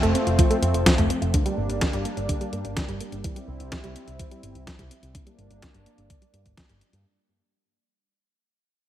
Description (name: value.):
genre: italo disco.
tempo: 126 BPM.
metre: 4/4.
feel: straight.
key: unclear.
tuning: A4 = 440 Hz.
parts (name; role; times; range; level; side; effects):
lush unison pad; sustained chords; 0.0-7.0 s; F3 to E4; -30 LUFS; equal; chorus, vintage 12-bit sampler grit.
analog pluck; arpeggios; 0.0-7.0 s; D3 to F4; -29 LUFS; right 2 dB; chorus, digital delay.
picked electric bass with an envelope filter; bass; 0.0-7.0 s; F1 to G2; -28 LUFS; equal; tube saturation.
clean 12-bit digital drum machine; drums; 0.0-7.0 s; hi-hat, snare drum; -26 LUFS; equal; overdrive.
electronic kick drum; drums; 0.4-6.7 s; none; -24 LUFS; equal; overdrive.
room: moderate plate reverb, RT60 1.9 s.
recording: bright 1980s-style digital production.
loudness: -21 LUFS.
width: side -12 dB against mid.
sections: 0.0-7.1 A section.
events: fade-out 0.0-7.1; filter sweep on analog synth pad 0.0-7.1.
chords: 0.0 F; 1.3 Gm; 3.2 C; 5.1 Gm.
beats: 0.39 0.86 | 1.34 1.81 2.29 2.77 | 3.24 3.72 4.20 4.67 | 5.15 5.62 6.10 6.58.